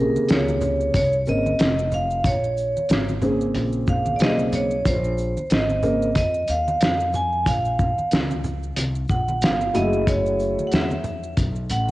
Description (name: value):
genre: hip hop, jazz-hop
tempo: 92 BPM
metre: 4/4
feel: swing 57% on 16ths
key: Bb minor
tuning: A4 = 442 Hz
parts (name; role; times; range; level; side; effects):
- vibraphone with hard mallets; melody; 0.0-11.9 s; Bb4 to Ab5; -24 LUFS; right 1 dB; cassette tape, analog delay
- dark grand piano; accompaniment; 0.0-11.0 s; C3 to Bb4; -24 LUFS; equal; cassette tape
- upright bass; bass; 0.0-11.9 s; F1 to F2; -26 LUFS; equal; tube saturation
- congas and maracas; percussion; 0.2-11.9 s; none; -34 LUFS; right 1 dB; none
- cloth-damped thuddy drum kit; drums; 0.3-11.9 s; hi-hat, kick drum, shaker, snare drum; -23 LUFS; equal; cassette tape
room: moderate lush hall reverb, RT60 1.7 s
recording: home recording on cassette, nothing above 10.7 kHz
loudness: -19 LUFS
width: side -17 dB against mid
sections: 0.0-11.9 A section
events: none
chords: 0.0 Bbm9; 9.7 Gbm9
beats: 0.29 0.94 1.59 | 2.25 2.90 3.55 4.20 | 4.85 5.51 6.16 6.81 | 7.46 8.12 8.77 9.42 | 10.07 10.72 11.38